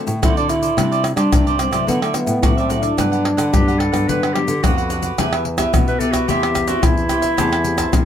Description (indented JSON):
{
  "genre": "samba and choro",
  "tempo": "109 BPM",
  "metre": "4/4",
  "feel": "straight",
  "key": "G major",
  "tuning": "A4 = 442 Hz",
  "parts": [
    { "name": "nylon-string guitar", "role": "accompaniment", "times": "0.0-8.1 s", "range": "G2 to G4", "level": "-26 LUFS", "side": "left 5 dB", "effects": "none" },
    { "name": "nylon-string guitar", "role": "bass", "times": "0.0-8.1 s", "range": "E2 to G3", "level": "-23 LUFS", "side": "equal", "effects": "none" },
    { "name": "tube shaker, pandeiro, surdo and tamborim", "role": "percussion", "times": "0.1-8.1 s", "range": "none", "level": "-19 LUFS", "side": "left 1 dB", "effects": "none" },
    { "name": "mellow trombone", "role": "melody", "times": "0.2-4.9 s", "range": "A3 to E4", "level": "-20 LUFS", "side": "right 1 dB", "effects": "none" },
    { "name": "cavaquinho", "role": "accompaniment", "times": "0.2-8.1 s", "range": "D4 to A5", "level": "-24 LUFS", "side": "right 6 dB", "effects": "none" },
    { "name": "warm clarinet", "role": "second line", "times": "3.5-8.1 s", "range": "E4 to B4", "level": "-22 LUFS", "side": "left 1 dB", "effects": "none" }
  ],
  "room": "light reverb",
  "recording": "close, detailed microphones",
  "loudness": "-15 LUFS",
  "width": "side -9 dB against mid",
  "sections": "0.0-5.2 A section; 5.2-8.1 B section",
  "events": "clarinet solo 5.2-8.1",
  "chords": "0.0 D7; 0.8 Csus2; 1.9 Dadd9; 3.0 Gmaj7; 5.2 Em; 6.3 C/E; 7.4 Am7/E"
}